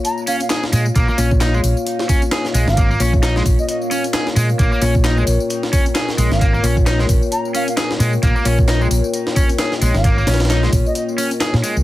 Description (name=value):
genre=breakbeat, breaks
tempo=132 BPM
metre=4/4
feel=swing 57% on 16ths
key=Bb dorian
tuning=A4 = 442 Hz
part: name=mellow wooden flute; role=melody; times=0.0-11.0 s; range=Eb5 to Bb5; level=-25 LUFS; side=right 2 dB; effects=telephone sound, tape echo
part: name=dark analog pad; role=sustained chords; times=0.0-11.8 s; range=Bb3 to G5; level=-27 LUFS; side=equal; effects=chorus, phaser, sidechain pumping
part: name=mellow tine electric piano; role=stabs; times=0.0-11.8 s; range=Bb3 to Db5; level=-23 LUFS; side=left 5 dB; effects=tape echo
part: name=breakbeat sampler-style drum kit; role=drums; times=0.0-11.8 s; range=hi-hat, kick drum, snare drum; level=-18 LUFS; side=equal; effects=studio ambience
part: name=garage drum kit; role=drums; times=0.0-11.8 s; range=handclaps, hi-hat, tambourine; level=-28 LUFS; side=left 1 dB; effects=studio ambience
part: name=crunchy overdriven guitar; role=riff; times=0.3-11.7 s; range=Ab3 to Ab4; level=-23 LUFS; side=equal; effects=tape echo
part: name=hollow-body short-scale fingered electric bass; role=bass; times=0.7-11.8 s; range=Ab1 to Bb2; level=-17 LUFS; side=equal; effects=none
room=light reverb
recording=dense, heavily limited modern master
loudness=-14 LUFS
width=side -15 dB against mid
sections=0.0-11.8 A section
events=none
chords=0.0 Bbm